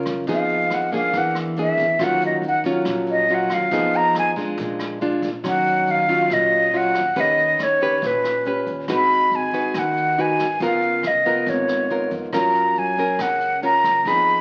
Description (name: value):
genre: bossa nova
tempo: 139 BPM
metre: 4/4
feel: straight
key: Eb minor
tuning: A4 = 440 Hz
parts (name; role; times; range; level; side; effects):
- nylon-string guitar; accompaniment; 0.0-14.4 s; Ab2 to Cb5; -26 LUFS; equal; none
- upright bass; bass; 0.0-14.4 s; Ab1 to Ab2; -36 LUFS; equal; none
- jazz brush drum kit; drums; 0.1-14.4 s; hi-hat, kick drum, rim click; -37 LUFS; equal; none
- breathy concert flute; melody; 0.3-14.4 s; Cb5 to Cb6; -21 LUFS; equal; none
room: wet large studio reverb, RT60 1.3 s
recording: very old 78 rpm record, vinyl crackle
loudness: -20 LUFS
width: mono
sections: 0.0-5.4 A section; 5.4-14.4 B section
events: flute solo 0.0-5.4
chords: 0.3 Fm7b5; 1.1 E7#11; 2.0 Ebm9; 3.7 Fm7b5; 4.6 Bb7; 5.4 Ebm9; 7.2 Eb7b13; 8.9 Abm7; 10.6 Db13; 12.3 Gbmaj7